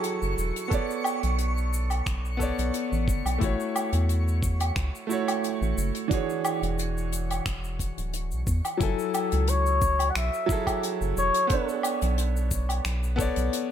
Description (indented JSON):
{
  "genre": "sunset chillout",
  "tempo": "89 BPM",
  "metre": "4/4",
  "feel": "straight",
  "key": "F# minor",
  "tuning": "A4 = 440 Hz",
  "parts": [
    { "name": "clear baby grand piano", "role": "accompaniment", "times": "0.0-13.7 s", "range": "E3 to G#5", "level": "-30 LUFS", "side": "moving between left 7 dB and right 8 dB", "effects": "auto-pan, tape echo" },
    { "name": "jazz brush drum kit", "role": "drums", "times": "0.0-13.7 s", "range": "finger snaps, hi-hat, shaker, woodblock", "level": "-32 LUFS", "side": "equal", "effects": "none" },
    { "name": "twinkling granular texture", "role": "texture", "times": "0.0-8.8 s", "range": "C#6", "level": "-39 LUFS", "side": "left 1 dB", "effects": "built-in reverb" },
    { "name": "round analog bass", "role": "bass", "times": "0.2-13.5 s", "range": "D1 to E2", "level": "-27 LUFS", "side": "equal", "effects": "none" },
    { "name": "electronic kick drum", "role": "drums", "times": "0.7-13.3 s", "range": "none", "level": "-29 LUFS", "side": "equal", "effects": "none" },
    { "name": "trumpet with bucket mute", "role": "melody", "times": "8.8-11.8 s", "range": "A4 to F#5", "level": "-28 LUFS", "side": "left 3 dB", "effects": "digital delay" }
  ],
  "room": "light reverb, small room reverb",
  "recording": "none",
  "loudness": "-24 LUFS",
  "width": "side -10 dB against mid",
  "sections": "0.0-8.8 A section; 8.8-13.7 B section",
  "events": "none",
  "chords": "0.0 F#m9; 0.7 Bm9; 3.4 A6; 6.1 E13; 8.8 F#m9; 11.5 Bm9",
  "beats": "0.04 | 0.72 1.39 2.06 2.74 | 3.41 4.09 4.76 5.44 | 6.11 6.79 7.46 8.13 | 8.81 9.48 10.15 10.83 | 11.50 12.18 12.85 13.53"
}